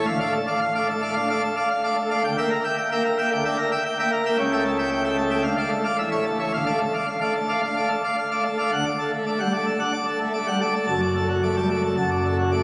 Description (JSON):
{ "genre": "classical, organ toccata", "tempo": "111 BPM", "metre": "4/4", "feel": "straight", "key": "D minor, D major from 8.7 s", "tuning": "A4 = 438 Hz", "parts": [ { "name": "pipe organ, plenum", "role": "solo", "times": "0.0-12.6 s", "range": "F#1 to A5", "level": "-23 LUFS", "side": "equal", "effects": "none" } ], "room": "wet cathedral reverb, RT60 4.8 s", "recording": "recorded on a phone in the room, club reverb", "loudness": "-23 LUFS", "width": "mono", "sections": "0.0-8.7 A section; 8.7-12.6 B section", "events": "none", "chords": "0.1 Dm; 2.2 Em7b5/D; 4.4 A7/C#; 5.5 Dm; 6.0 A; 6.5 Dm; 8.7 D; 10.9 D/F#", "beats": "| 0.08 0.62 1.16 1.70 | 2.24 2.78 3.31 3.85 | 4.38 4.92 5.45 5.99 | 6.54 7.08 7.63 8.18 | 8.73 9.27 9.81 10.35 | 10.89 11.43 11.97 12.51" }